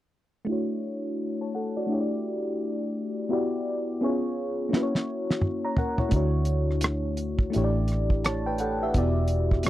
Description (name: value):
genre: R&B, neo-soul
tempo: 85 BPM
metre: 4/4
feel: swing 62% on 16ths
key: D major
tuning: A4 = 440 Hz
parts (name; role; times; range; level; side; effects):
- mellow FM electric piano; accompaniment; 0.4-9.7 s; A3 to A#5; -27 LUFS; left 1 dB; chorus, low-pass filter
- cloth-damped thuddy drum kit; drums; 4.7-9.7 s; hi-hat, kick drum, rim click, snare drum, toms; -25 LUFS; equal; none
- vintage muted fingered electric bass; bass; 6.1-9.6 s; E1 to D2; -26 LUFS; equal; none
room: little or no reverb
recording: dry, close 1970s-style studio recording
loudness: -25 LUFS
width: side -14 dB against mid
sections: 0.5-9.7 A section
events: filter sweep on FM electric piano 0.5-9.7; drum fill 4.7-6.1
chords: 0.5 Dmaj9; 1.9 A7sus4; 3.3 Em9; 4.0 C#7; 4.7 F#7; 6.1 Dmaj9; 7.5 A7sus4; 8.9 Em9